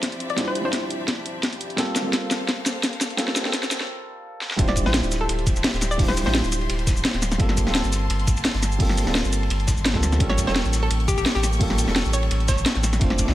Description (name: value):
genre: liquid drum and bass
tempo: 171 BPM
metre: 4/4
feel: swing 54% on 16ths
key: D minor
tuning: A4 = 440 Hz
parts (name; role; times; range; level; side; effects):
- felt-muted upright piano; accompaniment; 0.0-13.3 s; G3 to C5; -29 LUFS; right 2 dB; none
- clear symphonic string section; sustained chords; 0.0-13.3 s; F3 to D6; -34 LUFS; left 2 dB; none
- drum and bass drum kit; drums; 0.0-13.3 s; cabasa, hi-hat, snare drum; -24 LUFS; equal; none
- electronic kick drum; drums; 0.0-13.3 s; none; -24 LUFS; equal; overdrive, high-pass filter on kick, high-pass filter on room
- hollow square pluck; melody; 0.3-0.9, 4.7-6.5, 10.3-12.8 s; G4 to D5; -30 LUFS; left 1 dB; chorus, tape echo
- warm sub bass; bass; 4.6-13.3 s; D1 to D2; -24 LUFS; equal; none
- crunchy breakbeat drum kit; drums; 4.6-13.3 s; hi-hat, ride cymbal, snare drum; -32 LUFS; equal; high-pass filter on cymbals, high-pass filter on hats, high-pass filter on snare, high-pass filter on room
room: small room reverb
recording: high-pass filter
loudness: -20 LUFS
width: side -14 dB against mid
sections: 0.0-4.6 A section; 4.6-13.3 B section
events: build-up 0.0-4.6; drum fill 0.0-3.9, 4.4; filter sweep 0.0-4.6; break 3.9-4.6; drop 4.6-13.3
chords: 0.0 Dm11; 1.8 Gm11; 4.6 Dm11; 7.4 Gm11; 10.2 A7b9b13